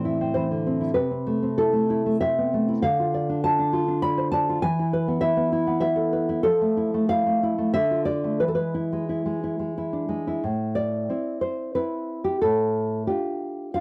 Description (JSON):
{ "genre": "romantic piece for solo classical guitar", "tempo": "88-102 BPM", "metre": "3/4", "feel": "rubato", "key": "A minor", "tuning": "A4 = 440 Hz", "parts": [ { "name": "nylon-string guitar", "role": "solo", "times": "0.0-13.8 s", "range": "A2 to B5", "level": "-24 LUFS", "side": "equal", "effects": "none" } ], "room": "small room reverb", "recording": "dry, close 1970s-style studio recording", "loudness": "-24 LUFS", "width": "mono", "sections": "0.0-10.4 A section; 10.4-13.8 B section", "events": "none", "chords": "0.0 Am; 1.0 Am/C; 2.8 Dm; 4.6 E; 6.5 Fmaj7; 7.8 Dm; 8.4 E; 10.4 Am; 12.4 Dm/A" }